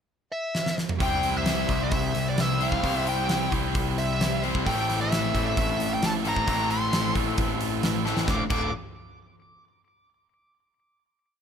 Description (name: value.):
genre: classic rock.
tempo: 132 BPM.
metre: 4/4.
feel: straight.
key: unclear.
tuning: A4 = 438 Hz.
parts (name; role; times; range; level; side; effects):
bluesy overdriven lead guitar; melody; 0.3-8.7 s; D5 to D6; -30 LUFS; equal; wah, distortion.
huge arena drum kit; drums; 0.5-8.6 s; crash cymbal, hi-hat, kick drum, snare drum, toms; -29 LUFS; equal; none.
crunchy overdriven guitar; riff; 1.0-8.7 s; D2 to C5; -29 LUFS; left 9 dB; none.
distorted electric guitar; riff; 1.0-8.7 s; D2 to C5; -31 LUFS; right 12 dB; overdrive.
growling picked electric bass; bass; 1.0-8.7 s; D1 to C2; -30 LUFS; right 1 dB; overdrive.
room: light reverb.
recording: none.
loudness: -23 LUFS.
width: side -7 dB against mid.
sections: 0.0-1.0 pickup bar; 1.0-8.3 pre-chorus; 8.3-10.1 final chord.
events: drum fill 0.5-1.0, 8.1.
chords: 0.0 N.C.; 1.0 C; 4.7 Am; 8.3 Dm.